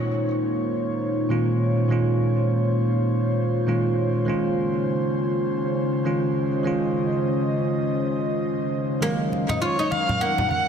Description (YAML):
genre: organic downtempo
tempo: 101 BPM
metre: 4/4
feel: swing 58% on 16ths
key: Bb minor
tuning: A4 = 441 Hz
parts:
  - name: bell-like tine electric piano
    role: accompaniment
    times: 0.0-10.7 s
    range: Bb2 to F4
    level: -24 LUFS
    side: right 2 dB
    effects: digital delay
  - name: airy breathy pad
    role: sustained chords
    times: 0.0-10.7 s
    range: Bb2 to F5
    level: -26 LUFS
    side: left 2 dB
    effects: chorus
  - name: bronze singing bowl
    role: texture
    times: 0.0-10.7 s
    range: Eb4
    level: -35 LUFS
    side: left 2 dB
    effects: none
  - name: oud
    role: arpeggios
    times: 9.0-10.3 s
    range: Bb3 to F4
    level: -28 LUFS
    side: equal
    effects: digital delay
  - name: congas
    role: percussion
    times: 9.3-10.6 s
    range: none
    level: -30 LUFS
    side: right 1 dB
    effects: none
  - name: warm kamancheh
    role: melody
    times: 9.6-10.7 s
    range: Db5 to Gb5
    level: -22 LUFS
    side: equal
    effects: vintage 12-bit sampler grit
room: wet concert hall reverb, RT60 2.4 s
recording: dense, heavily limited modern master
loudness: -21 LUFS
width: side -7 dB against mid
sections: 0.0-10.7 A section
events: none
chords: 0.0 Bbmadd9; 4.3 Dbmaj7; 9.0 Ebmadd9